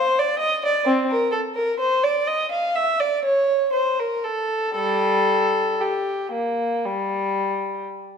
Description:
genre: classical, baroque-style suite movement for unaccompanied violin.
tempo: 55-66 BPM.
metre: 4/4.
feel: rubato.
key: G minor.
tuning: A4 = 440 Hz.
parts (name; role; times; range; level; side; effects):
warm violin; solo; 0.0-7.9 s; G3 to F5; -20 LUFS; equal; none.
room: wet recital hall reverb, RT60 1.5 s.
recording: none.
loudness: -19 LUFS.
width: side -6 dB against mid.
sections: 0.0-8.2 A section.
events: none.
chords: none.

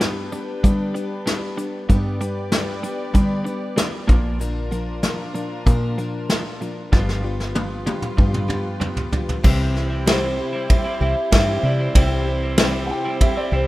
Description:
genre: folk rock and heartland rock.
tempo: 95 BPM.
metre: 4/4.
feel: straight.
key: G mixolydian.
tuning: A4 = 443 Hz.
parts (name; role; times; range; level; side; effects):
picked plugged-in steel-string acoustic guitar; accompaniment; 0.0-13.7 s; G2 to B4; -29 LUFS; left 4 dB; none.
warm chamber string section; sustained chords; 0.0-13.7 s; C4 to D5; -31 LUFS; equal; none.
twelve-string electric guitar; riff; 0.0-13.7 s; Bb2 to F4; -30 LUFS; right 2 dB; none.
deep dub fingered electric bass; bass; 0.0-13.6 s; G1 to G3; -23 LUFS; equal; none.
soft brush drum kit; drums; 0.0-13.4 s; crash cymbal, hi-hat, kick drum, ride cymbal, snare drum, toms; -20 LUFS; equal; none.
vibraphone with medium hard mallets; melody; 10.1-12.9 s; C5 to E5; -26 LUFS; right 1 dB; analog delay.
clear upright piano; second line; 12.9-13.7 s; C5 to G5; -25 LUFS; right 1 dB; none.
room: light reverb.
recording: rough home demo mix.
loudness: -18 LUFS.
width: side -17 dB against mid.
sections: 0.0-9.4 A section; 9.4-13.7 B section.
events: drum fill 6.9-9.4.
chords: 0.0 G; 4.1 Bb; 6.9 G7; 9.4 C.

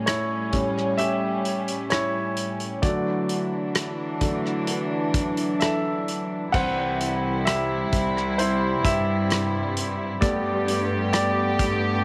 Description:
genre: pop ballad.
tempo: 65 BPM.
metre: 4/4.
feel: straight.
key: unclear.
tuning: A4 = 440 Hz.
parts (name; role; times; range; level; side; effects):
warm studio string section; sustained chords; 0.0-12.0 s; A2 to G4; -29 LUFS; equal; none.
clear concert grand piano; accompaniment; 0.1-12.0 s; A2 to F#5; -28 LUFS; equal; none.
loose indie drum kit; drums; 0.1-11.8 s; crash cymbal, hi-hat, kick drum, rim click; -29 LUFS; equal; none.
clear studio cello section; bass; 6.5-12.0 s; C2 to G2; -31 LUFS; equal; none.
room: light reverb, studio ambience.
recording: none.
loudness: -24 LUFS.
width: mono.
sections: 0.0-6.5 A section; 6.5-12.0 B section.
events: grand piano solo 0.0-6.5, 6.5-12.0.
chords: 0.0 A7; 2.8 Dadd9; 6.5 C; 10.2 Gadd9.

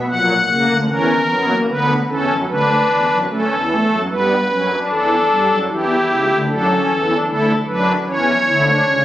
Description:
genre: classical, baroque-style 3-part fugue for pipe organ.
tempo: 75 BPM.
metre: 4/4.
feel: straight.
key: unclear.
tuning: A4 = 436 Hz.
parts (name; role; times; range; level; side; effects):
pipe organ, strings celeste; solo; 0.0-9.0 s; A#1 to F#5; -14 LUFS; equal; none.
room: wet scoring stage reverb, RT60 1.9 s.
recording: recorded on a phone in the room, studio reverb.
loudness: -14 LUFS.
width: side -13 dB against mid.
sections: 0.0-3.3 A section; 3.3-9.0 B section.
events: none.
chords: 0.1 F#7/A#; 1.7 Bm/D; 3.3 F#m; 4.9 Em; 6.5 D; 8.1 Bmadd9 (rootless).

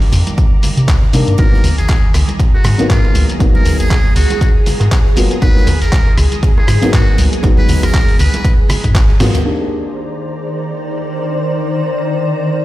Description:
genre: deep house.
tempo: 119 BPM.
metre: 4/4.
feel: swing 57% on 16ths.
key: C minor.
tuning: A4 = 440 Hz.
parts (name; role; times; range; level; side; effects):
soft string machine; sustained chords; 0.0-12.6 s; Eb3 to Eb6; -26 LUFS; left 1 dB; ensemble chorus, sidechain pumping.
felt-muted upright piano; stabs; 0.0-12.6 s; Gb3 to Bb4; -20 LUFS; left 1 dB; sidechain pumping, tape echo.
dusty soul sampler-style drum kit; drums; 0.0-9.4 s; handclaps, hi-hat, rim click, snare drum; -23 LUFS; equal; low-pass filter on hats, low-pass filter on snare, low-pass filter on room.
granular cloud pad; texture; 0.0-12.6 s; Eb3 to D6; -23 LUFS; equal; built-in reverb, sidechain pumping.
round analog bass; bass; 0.1-9.4 s; Gb1 to C3; -14 LUFS; equal; sidechain pumping.
big rock drum kit; drums; 0.1-12.6 s; hi-hat, ride cymbal, snare drum; -33 LUFS; equal; none.
congas and bongos; percussion; 0.1-9.3 s; none; -24 LUFS; right 3 dB; sidechain pumping on perc.
shekere; percussion; 0.1-9.4 s; none; -29 LUFS; left 3 dB; none.
electronic kick drum; drums; 0.4-9.1 s; none; -12 LUFS; equal; none.
trumpet with metal mute; melody; 1.4-8.5 s; F4 to Cb5; -24 LUFS; equal; tape echo.
room: light reverb, small room ambience.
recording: played on a big sound system in a bare room, large studio reverb.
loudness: -10 LUFS.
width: side -16 dB against mid.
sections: 0.0-9.5 A section; 9.5-12.6 B section.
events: drum fill 9.2; band accent 9.2.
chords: 0.0 Cm9; 1.4 Abm9; 9.5 Cm9.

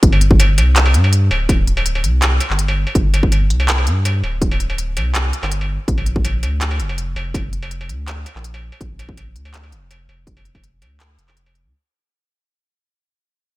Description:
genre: half-time drum and bass.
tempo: 164 BPM.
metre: 4/4.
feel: half-time.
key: G minor.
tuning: A4 = 437 Hz.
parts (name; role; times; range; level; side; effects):
saturated sub bass; bass; 0.0-11.7 s; D1 to G2; -17 LUFS; equal; none.
electronic kick drum; drums; 0.0-10.6 s; none; -16 LUFS; equal; none.
industrial drum kit; drums; 0.0-11.6 s; handclaps, hi-hat, struck metal; -21 LUFS; equal; none.
room: little or no reverb.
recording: none.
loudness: -14 LUFS.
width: side -18 dB against mid.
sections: 0.0-11.7 A section.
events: fade-out 0.0-11.7.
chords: none.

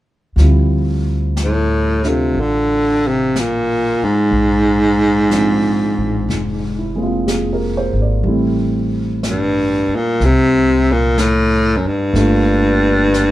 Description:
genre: jazz ballad.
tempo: 61 BPM.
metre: 4/4.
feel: swing 68% on 8ths.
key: D minor.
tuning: A4 = 440 Hz.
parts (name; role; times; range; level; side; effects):
dark upright piano; accompaniment; 0.4-13.3 s; F3 to D5; -21 LUFS; right 2 dB; none.
upright bass; bass; 0.4-13.3 s; F1 to D2; -19 LUFS; equal; none.
jazz brush drum kit; drums; 0.4-13.3 s; brushed snare drum, hi-hat, snare drum; -29 LUFS; left 1 dB; none.
clear baritone saxophone; melody; 1.4-13.3 s; F#2 to D3; -14 LUFS; equal; none.
room: light reverb.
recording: band playing live in one room.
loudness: -13 LUFS.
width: side -15 dB against mid.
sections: 0.4-13.3 A section.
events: none.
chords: 0.4 Dm11; 4.3 Bb9; 8.2 Am7; 12.2 Gm7.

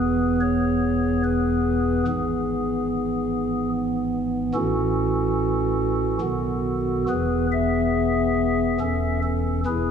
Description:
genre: classical, chorale-style piece for pipe organ.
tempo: 72 BPM.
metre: 3/4.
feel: rubato.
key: E major.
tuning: A4 = 441 Hz.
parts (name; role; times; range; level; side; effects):
pipe organ, stopped flute; solo; 0.0-9.9 s; E1 to E5; -20 LUFS; equal; none.
room: wet church reverb, RT60 2.4 s.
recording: minimal, uncompressed stereo recording.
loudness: -21 LUFS.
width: side -7 dB against mid.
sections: 0.0-9.9 A section.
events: none.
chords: 0.0 E; 2.1 E/G#; 4.6 F#m7/A; 6.2 B7; 7.1 E; 8.8 A/E.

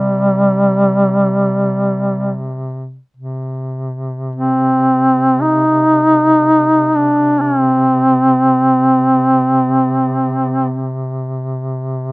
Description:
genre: caucasian folk, Caucasian lament.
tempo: free time.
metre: none.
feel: none.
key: C minor.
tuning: A4 = 441 Hz.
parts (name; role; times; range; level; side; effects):
mellow duduk; melody; 0.0-10.8 s; G3 to Eb4; -11 LUFS; equal; none.
mellow duduk; drone; 0.0-12.1 s; C3; -21 LUFS; equal; none.
room: light reverb.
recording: recorded outdoors, with no room sound.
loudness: -12 LUFS.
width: side -25 dB against mid.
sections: 0.0-12.1 A section.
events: none.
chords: none.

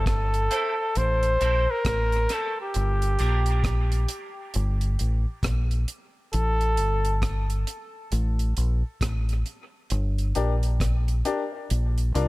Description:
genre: dub reggae.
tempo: 67 BPM.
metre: 4/4.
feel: swing 61% on 16ths.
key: unclear.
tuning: A4 = 443 Hz.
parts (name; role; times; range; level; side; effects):
warm flugelhorn; melody; 0.0-7.2 s; G4 to C5; -27 LUFS; equal; dub echo.
deep dub fingered electric bass; bass; 0.0-12.3 s; G1 to C2; -23 LUFS; equal; none.
deep reggae drum kit; drums; 0.1-12.3 s; hi-hat, kick drum, rim click; -30 LUFS; equal; none.
clean electric guitar; accompaniment; 0.5-3.4 s; A3 to Bb4; -35 LUFS; right 5 dB; ensemble chorus, high-pass filter, dub echo.
clear upright piano; stabs; 0.5-3.4, 10.4-12.3 s; C4 to D5; -32 LUFS; left 4 dB; high-pass filter, dub echo.
room: studio reverb.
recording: none.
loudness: -23 LUFS.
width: side -20 dB against mid.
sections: 0.0-12.3 A section.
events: none.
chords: 0.0 Am; 2.7 Gm; 6.3 Gsus2; 9.9 Gm; 11.7 Bb.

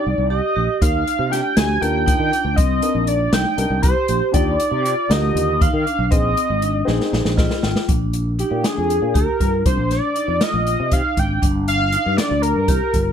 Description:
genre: progressive instrumental, band music in an uneven meter.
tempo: 238 BPM (eighths).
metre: 7/8.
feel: straight.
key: C minor.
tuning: A4 = 436 Hz.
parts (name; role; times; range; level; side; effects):
octave-doubled lead; melody; 0.0-13.1 s; G4 to Ab5; -21 LUFS; equal; chorus, plate reverb.
vibraphone with medium hard mallets; arpeggios; 0.0-13.1 s; C4 to G4; -25 LUFS; moving between left 5 dB and right 7 dB; auto-pan.
sustaining fretless electric bass; bass; 0.1-13.1 s; G1 to Eb3; -22 LUFS; equal; ensemble chorus.
open jazz drum kit; drums; 0.8-13.1 s; hi-hat, kick drum, snare drum; -20 LUFS; equal; none.
dark baby grand piano; accompaniment; 1.3-7.9 s; D3 to G5; -26 LUFS; left 3 dB; none.
room: light reverb.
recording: none.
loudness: -16 LUFS.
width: side -8 dB against mid.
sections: 0.0-7.9 A section; 7.9-13.1 B section.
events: drum fill 6.9-7.9; grand piano fill 7.1-7.9; analog synth lead solo 7.9-13.1.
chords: 0.0 Cm9; 0.8 Ebmaj7; 2.6 Cm9; 4.3 Ebmaj7; 6.1 Bb7sus4; 7.9 Bb; 9.6 Cmadd9; 11.4 G7(no3).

